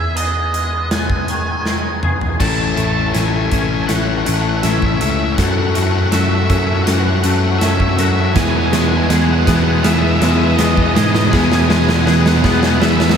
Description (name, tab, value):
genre	post-rock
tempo	81 BPM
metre	4/4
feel	straight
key	A lydian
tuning	A4 = 441 Hz
part	octave-fuzz lead guitar	melody	0.0-13.2 s	D#5 to A5	-22 LUFS	right 3 dB	distortion, ping-pong delay
part	clear studio string section	sustained chords	0.0-13.2 s	C#3 to D#6	-27 LUFS	equal	none
part	twangy electric guitar	arpeggios	0.0-13.2 s	E2 to G#4	-24 LUFS	left 2 dB	ensemble chorus, ping-pong delay
part	tine electric piano	bass	0.0-13.1 s	A1 to G#2	-18 LUFS	equal	none
part	big rock drum kit	drums	0.2-13.2 s	crash cymbal, hi-hat, kick drum, snare drum, toms	-19 LUFS	equal	none
part	overdriven electric guitar	riff	2.4-13.2 s	E3 to A4	-19 LUFS	left 10 dB	none
part	thick fuzz guitar	riff	8.3-13.2 s	E2 to E3	-19 LUFS	right 10 dB	distortion
room	moderate huge ambient reverb, RT60 8.8 s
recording	dreamy mix soaked in reverb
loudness	-13 LUFS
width	side -7 dB against mid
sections	0.0-2.4 A section; 2.4-13.2 B section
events	drum fill 1.7-2.4, 2.4-13.2; build-up 2.4-13.2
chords	0.0 Emaj7; 2.4 Amaj7; 5.4 F#m7; 8.4 Emaj7